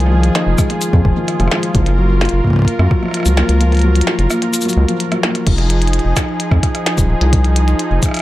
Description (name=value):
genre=IDM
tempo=129 BPM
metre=4/4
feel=straight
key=F phrygian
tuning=A4 = 438 Hz
part: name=warm analog pad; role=sustained chords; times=0.0-8.2 s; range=F3 to Bb4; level=-20 LUFS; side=equal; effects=wide subtle chorus, sidechain pumping
part: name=felt-muted upright piano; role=arpeggios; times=0.0-5.5 s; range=Eb3 to F4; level=-18 LUFS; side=left 1 dB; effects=tape echo
part: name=round analog bass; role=bass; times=0.0-8.0 s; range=Eb1 to Gb2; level=-13 LUFS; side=equal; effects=none
part: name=glitchy drum kit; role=drums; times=0.0-8.2 s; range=crash cymbal, hi-hat, rim click, shaker, snare drum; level=-21 LUFS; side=equal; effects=analog delay
part: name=electronic kick drum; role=drums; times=0.6-8.1 s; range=none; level=-15 LUFS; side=equal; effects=overdrive
room=light reverb, digital ambience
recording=echo-heavy mix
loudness=-12 LUFS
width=side -16 dB against mid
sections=0.0-5.5 A section; 5.5-8.2 A section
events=kick drops out 3.6-5.5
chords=0.0 Fm7; 1.7 Gbmaj7; 5.5 Fm7